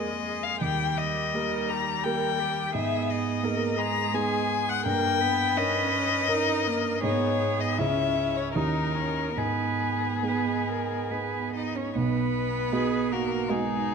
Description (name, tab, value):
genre	classical, slow romantic movement for piano quartet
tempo	68-88 BPM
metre	3/4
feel	rubato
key	G# minor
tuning	A4 = 440 Hz
part	warm violin	melody	0.0-13.9 s	G#4 to A#5	-28 LUFS	left 9 dB	none
part	rich cello	second line	0.0-13.9 s	G#3 to B4	-32 LUFS	right 6 dB	none
part	warm baby grand piano	accompaniment	0.0-13.9 s	B1 to A#4	-29 LUFS	right 3 dB	none
part	warm viola	accompaniment	0.0-13.9 s	G3 to G#4	-33 LUFS	right 5 dB	none
room	moderate concert hall reverb, RT60 2.0 s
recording	close, detailed microphones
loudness	-24 LUFS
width	side -6 dB against mid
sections	0.0-12.0 A section; 12.0-13.9 B section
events	none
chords	0.0 A#7(no3)/E#; 0.6 D#; 2.8 G#m; 4.9 D#7/G; 7.0 G#m; 7.8 C#m; 8.6 D#7b9; 9.4 G#m; 12.0 B